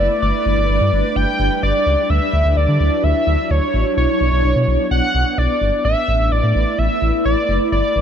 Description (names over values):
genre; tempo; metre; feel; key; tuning
pop; 128 BPM; 4/4; straight; unclear; A4 = 440 Hz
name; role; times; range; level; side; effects
wide unison lead; melody; 0.0-8.0 s; C#5 to G5; -19 LUFS; equal; tape echo
shimmering ambient pad; sustained chords; 0.0-8.0 s; F#3 to B4; -21 LUFS; equal; chorus, built-in reverb
smooth synth bass; bass; 0.0-8.0 s; F#1 to D3; -18 LUFS; equal; none
room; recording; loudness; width
light reverb, digital ambience; none; -14 LUFS; side -8 dB against mid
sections
0.0-8.0 A section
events
none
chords
0.2 G; 2.1 Dadd9; 4.0 Bmadd9; 5.8 Asus2